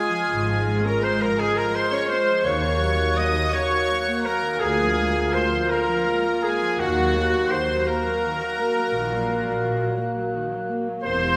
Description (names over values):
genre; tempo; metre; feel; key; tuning
classical, slow romantic movement for symphony orchestra; 56 BPM (dotted quarters); 12/8; rubato; unclear; A4 = 441 Hz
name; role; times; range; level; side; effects
clear studio violin section; melody; 0.0-11.4 s; Gb5 to Eb6; -32 LUFS; equal; none
bright oboe; second line; 0.0-11.4 s; Gb4 to Eb5; -32 LUFS; equal; none
clear clarinet; second line; 0.0-11.4 s; Gb4 to Eb5; -32 LUFS; equal; none
rich studio violin section; second line; 0.0-11.4 s; Gb4 to Eb5; -37 LUFS; equal; none
small flute group; second line; 0.0-11.4 s; F6 to G6; -37 LUFS; equal; none
dark bassoon; accompaniment; 0.0-11.4 s; Ab3 to Bb3; -32 LUFS; equal; none
rich studio viola section; accompaniment; 0.0-11.4 s; C3 to G4; -34 LUFS; equal; none
mellow French horn section; sustained chords; 0.0-11.4 s; Ab3 to G4; -33 LUFS; equal; none
bright trumpet; stabs; 0.0-11.4 s; Gb4 to Eb5; -29 LUFS; equal; none
dark studio double bass section; bass; 0.3-11.4 s; E1 to Eb2; -35 LUFS; equal; none
rich studio cello section; bass; 0.3-11.4 s; D2 to Bb2; -32 LUFS; equal; none
room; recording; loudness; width
wet concert hall reverb, RT60 2.2 s; none; -23 LUFS; mono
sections
0.0-11.4 A section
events
none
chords
0.0 Db; 2.5 Ebm7; 4.6 Bb7/D; 6.8 Ebm